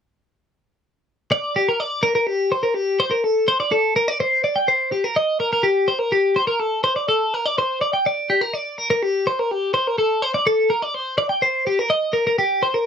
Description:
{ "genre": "rock", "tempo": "250 BPM (eighths)", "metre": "7/8", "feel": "straight", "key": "G minor", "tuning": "A4 = 440 Hz", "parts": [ { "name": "twelve-string electric guitar", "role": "solo", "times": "1.3-12.9 s", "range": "G4 to G5", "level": "-18 LUFS", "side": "left 1 dB", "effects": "none" } ], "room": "light reverb", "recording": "dry, close 1970s-style studio recording", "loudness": "-18 LUFS", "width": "side -7 dB against mid", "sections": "1.3-12.9 A section", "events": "none", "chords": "none" }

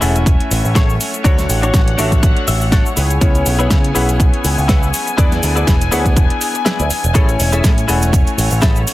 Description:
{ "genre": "nu-disco, nu disco", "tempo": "122 BPM", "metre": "4/4", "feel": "swing 55% on 16ths", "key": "A major", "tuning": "A4 = 440 Hz", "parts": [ { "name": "warm electric grand piano", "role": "accompaniment", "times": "0.0-8.9 s", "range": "A3 to G#5", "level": "-21 LUFS", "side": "left 1 dB", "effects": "sidechain pumping, analog delay" }, { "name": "dark studio string section", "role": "sustained chords", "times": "0.0-8.9 s", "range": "D3 to G#5", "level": "-23 LUFS", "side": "left 2 dB", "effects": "sidechain pumping" }, { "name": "direct-recorded clean electric guitar", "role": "riff", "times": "0.0-8.8 s", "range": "D4 to F#5", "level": "-24 LUFS", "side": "left 3 dB", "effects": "ensemble chorus, analog delay" }, { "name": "picked electric bass with an envelope filter", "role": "bass", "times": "0.0-8.8 s", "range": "E1 to C#3", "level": "-17 LUFS", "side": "equal", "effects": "none" }, { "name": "pop drum kit", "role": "drums", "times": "0.0-8.9 s", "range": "hi-hat, shaker, snare drum", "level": "-21 LUFS", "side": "equal", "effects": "overdrive" }, { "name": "electronic kick drum", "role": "drums", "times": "0.3-8.7 s", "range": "none", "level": "-13 LUFS", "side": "equal", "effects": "overdrive" }, { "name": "cabasa", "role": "percussion", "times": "7.1-8.8 s", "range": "none", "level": "-29 LUFS", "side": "right 4 dB", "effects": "none" } ], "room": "little or no reverb", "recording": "dense, heavily limited modern master", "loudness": "-12 LUFS", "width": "side -16 dB against mid", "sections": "0.0-8.9 A section", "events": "clean electric guitar fill 2.2-3.2; kick drops out 6.7-7.1", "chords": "0.0 Amaj7; 1.2 Dmaj7; 3.0 C#m7; 5.2 E7; 7.1 Amaj7" }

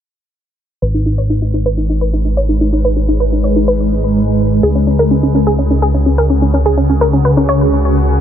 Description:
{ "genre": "house", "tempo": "126 BPM", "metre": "4/4", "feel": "straight", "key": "G# minor", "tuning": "A4 = 443 Hz", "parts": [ { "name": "shimmering ambient pad", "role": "sustained chords", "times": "1.8-8.2 s", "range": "C#3 to B4", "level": "-16 LUFS", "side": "left 1 dB", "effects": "chorus, built-in reverb, phaser" }, { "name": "analog pluck", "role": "arpeggios", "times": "0.8-8.2 s", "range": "C#4 to C#5", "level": "-16 LUFS", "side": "equal", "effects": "chorus, ping-pong delay" }, { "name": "fat analog bass", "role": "bass", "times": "0.8-8.2 s", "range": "G#1 to C#2", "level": "-14 LUFS", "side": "equal", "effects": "none" } ], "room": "light reverb", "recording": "low-pass filter, nothing above 8.0 kHz", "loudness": "-11 LUFS", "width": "side -9 dB against mid", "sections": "0.8-8.2 A section", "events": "filter sweep on synth arpeggio sound 0.8-8.2; filter sweep 0.8-8.2", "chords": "0.8 G#madd9; 4.6 C#sus4" }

